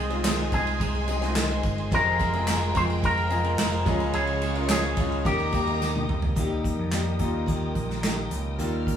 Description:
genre	piano-driven pop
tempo	108 BPM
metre	4/4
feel	straight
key	unclear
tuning	A4 = 440 Hz
part	electric guitar with an envelope filter	melody	0.0-6.1 s	G4 to C5	-28 LUFS	equal	none
part	warm studio violin section	second line	0.0-6.3 s	F4 to Bb5	-37 LUFS	right 2 dB	none
part	clear concert grand piano	accompaniment	0.0-9.0 s	C3 to Bb4	-31 LUFS	left 2 dB	none
part	muted studio string section	sustained chords	0.0-9.0 s	Ab4 to F6	-37 LUFS	left 2 dB	none
part	picked steel-string acoustic guitar	riff	0.0-9.0 s	F2 to Ab4	-32 LUFS	right 3 dB	none
part	picked electric bass	bass	0.0-9.0 s	F1 to F2	-29 LUFS	equal	none
part	unplugged drum kit	drums	0.1-9.0 s	handclaps, hi-hat, kick drum, ride cymbal, snare drum, toms	-28 LUFS	right 1 dB	none
part	tambourine	percussion	0.2-5.9 s	none	-42 LUFS	left 3 dB	none
room	wet studio reverb, RT60 0.6 s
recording	band playing live in one room, studio reverb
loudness	-23 LUFS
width	side -9 dB against mid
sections	0.0-6.4 A section; 6.4-9.0 B section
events	drum fill 5.8-6.4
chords	0.0 Ab/C; 1.9 Fm; 3.9 Db; 5.2 Eb

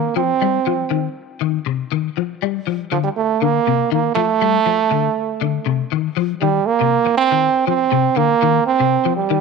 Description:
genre	afrobeat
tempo	120 BPM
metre	4/4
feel	swing 55% on 16ths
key	C dorian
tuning	A4 = 440 Hz
part	clear trombone	melody	0.0-9.4 s	F3 to C4	-16 LUFS	right 9 dB	none
part	electric guitar at the edge of break-up	arpeggios	0.0-9.4 s	C3 to G3	-20 LUFS	left 14 dB	ensemble chorus
room	moderate spring reverb, RT60 2.4 s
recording	1960s-style stereo with parts hard left and right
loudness	-16 LUFS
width	side -4 dB against mid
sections	0.0-6.4 A section; 6.4-9.4 B section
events	none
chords	0.0 Cm; 2.4 Bbmaj9 (rootless); 6.4 Cm11

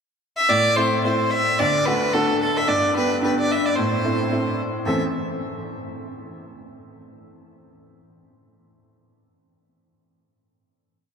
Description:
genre	celtic folk, Celtic reel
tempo	219 BPM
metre	4/4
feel	swing 58% on 8ths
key	A dorian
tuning	A4 = 440 Hz
part	clear fiddle	melody	0.4-5.0 s	A4 to E5	-21 LUFS	equal	none
part	bright upright piano	accompaniment	0.5-5.0 s	A1 to A4	-23 LUFS	equal	none
room	wet cathedral reverb, RT60 5.3 s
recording	recorded in a church or concert hall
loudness	-18 LUFS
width	side -6 dB against mid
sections	0.0-0.5 pickup bar; 0.5-4.9 A section; 4.9-6.0 final chord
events	none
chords	0.5 Am; 1.6 D; 2.7 G; 3.8 Am

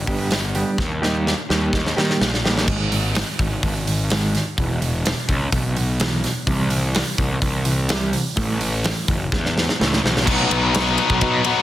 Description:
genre	quiet-loud alternative rock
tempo	126 BPM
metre	4/4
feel	straight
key	unclear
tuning	A4 = 440 Hz
part	fuzz picked electric bass	bass	0.0-11.4 s	E1 to D#3	-23 LUFS	equal	overdrive
part	mellow electric guitar	arpeggios	0.1-10.3 s	E2 to G4	-24 LUFS	right 2 dB	harmonic tremolo, tape echo
part	big rock drum kit	drums	0.1-11.6 s	crash cymbal, hi-hat, kick drum, ride cymbal, snare drum	-22 LUFS	equal	soft clipping on kick
part	distorted electric guitar	riff	10.3-11.6 s	B2 to D#4	-18 LUFS	left 3 dB	overdrive
room	moderate studio reverb, RT60 0.8 s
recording	dense, heavily limited modern master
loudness	-18 LUFS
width	side -14 dB against mid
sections	0.0-2.7 A section; 2.7-10.3 B section; 10.3-11.6 C section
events	drum fill 0.8-2.7, 9.3-10.3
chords	0.0 G; 0.8 D#; 2.7 G#5; 4.6 E5; 6.5 C; 8.4 A5; 10.3 B

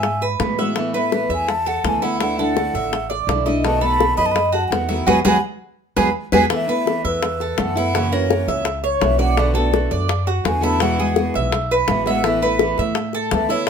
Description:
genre	latin, Cuban son and guajira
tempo	167 BPM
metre	4/4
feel	straight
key	A major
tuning	A4 = 441 Hz
part	breathy mellow concert flute	melody	0.0-13.7 s	B4 to B5	-23 LUFS	right 1 dB	none
part	nylon-string guitar	accompaniment	0.0-13.7 s	B2 to F#4	-23 LUFS	left 1 dB	none
part	Cuban tres	arpeggios	0.0-13.7 s	E4 to E5	-22 LUFS	right 2 dB	none
part	upright bass	bass	0.0-13.7 s	A1 to A2	-24 LUFS	right 1 dB	none
part	bongos	percussion	0.0-13.7 s	none	-23 LUFS	left 7 dB	none
room	moderate studio reverb, RT60 0.8 s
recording	minimal, uncompressed stereo recording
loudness	-17 LUFS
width	side -6 dB against mid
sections	0.0-6.5 A section; 6.5-13.7 B section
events	band accent 5.1-6.5; drum fill 5.4-6.5; flute solo 6.5-13.7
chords	0.0 Eadd9; 0.8 Asus2; 2.2 Dsus2; 3.6 B7; 5.1 Eadd9; 6.5 Asus2; 7.9 F#7; 9.4 Bm7; 10.8 Eadd9; 12.2 Asus2

